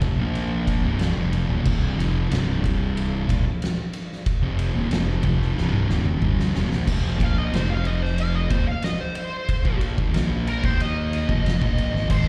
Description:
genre	stoner and doom metal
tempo	92 BPM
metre	4/4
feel	straight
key	unclear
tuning	A4 = 437 Hz
part	fuzz guitar	riff	0.0-12.3 s	C2 to Eb4	-28 LUFS	equal	distortion, slapback echo
part	fuzz fingered electric bass	bass	0.0-12.3 s	C1 to Eb2	-27 LUFS	equal	overdrive
part	oversized low-tuned drum kit	drums	0.0-12.3 s	crash cymbal, kick drum, ride cymbal, snare drum, toms	-28 LUFS	equal	none
part	fuzz lead guitar	melody	7.2-12.3 s	Bb4 to F5	-32 LUFS	equal	wah, distortion, slapback echo
room	little or no reverb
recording	live gig heard through the venue's PA, recital hall reverb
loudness	-23 LUFS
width	mono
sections	0.0-6.9 A section; 6.9-12.3 B section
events	drum fill 5.6-6.9; lead electric guitar solo 6.9-12.3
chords	0.2 Bb5; 0.8 Cm; 6.9 F5; 10.6 Eb5; 11.3 F5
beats	0.34 1.00 | 1.65 2.31 2.96 3.61 | 4.27 4.92 5.57 6.23 | 6.88 7.53 8.19 8.84 | 9.49 10.15 10.80 11.45 | 12.11

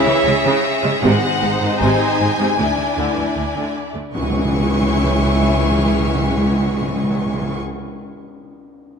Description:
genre	cinematic, suspense film score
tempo	77 BPM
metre	4/4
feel	straight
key	C# harmonic minor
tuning	A4 = 438 Hz
part	rich symphonic violin section	melody	0.0-7.6 s	E5 to C#6	-24 LUFS	left 1 dB	none
part	rich symphonic violin section	second line	0.0-7.6 s	E4 to G#5	-24 LUFS	equal	none
part	rich symphonic viola section	accompaniment	0.0-7.6 s	B#2 to E4	-23 LUFS	right 1 dB	none
part	mellow French horn section	sustained chords	0.0-7.6 s	B#3 to E4	-24 LUFS	left 3 dB	none
part	dark concert grand piano	texture	0.0-2.6 s	none	barely audible	none	none
part	rich chamber violin section	texture	0.0-6.8 s	E6 to B6	-32 LUFS	left 6 dB	none
part	clear symphonic cello section	bass	0.1-7.6 s	C#2 to C#3	-23 LUFS	right 2 dB	none
part	rich studio double bass section	bass	0.2-7.6 s	G#1 to D2	-24 LUFS	right 2 dB	none
part	timpani	percussion	1.0-7.6 s	G#2 to C#3	-23 LUFS	left 1 dB	none
part	tam-tam	percussion	4.2-7.6 s	none	-28 LUFS	left 4 dB	none
room	moderate scoring stage reverb, RT60 2.0 s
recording	dark, warm production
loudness	-15 LUFS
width	side -6 dB against mid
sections	0.0-4.1 A section; 4.1-7.3 B section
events	band accent 4.1-4.9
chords	0.0 C#m; 1.0 G#; 2.6 Dsus2; 4.1 C#m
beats	0.25 | 1.03 1.81 2.59 3.37 | 4.15 4.93 5.71 6.49

